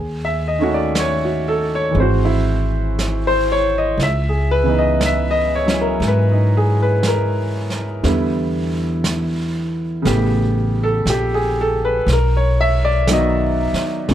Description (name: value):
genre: jazz ballad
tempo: 59 BPM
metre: 4/4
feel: swing 66% on 8ths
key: unclear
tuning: A4 = 440 Hz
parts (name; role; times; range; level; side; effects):
- clear baby grand piano; accompaniment; 0.0-14.1 s; C#3 to E5; -18 LUFS; equal; none
- upright bass; bass; 0.0-14.1 s; F#1 to G#2; -19 LUFS; equal; none
- vintage brush drum kit; drums; 1.0-14.1 s; brushed snare drum, hi-hat, snare drum; -27 LUFS; right 2 dB; none
room: little or no reverb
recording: none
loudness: -15 LUFS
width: side -11 dB against mid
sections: 0.0-14.1 A section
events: none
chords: 0.0 D#m7b5; 2.0 G#7b13; 4.0 C#m9; 8.0 Em7; 10.0 A9; 12.1 B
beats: 0.95 1.96 2.98 | 3.99 5.00 6.01 7.02 | 8.03 9.04 10.05 11.06 | 12.06 13.07 14.08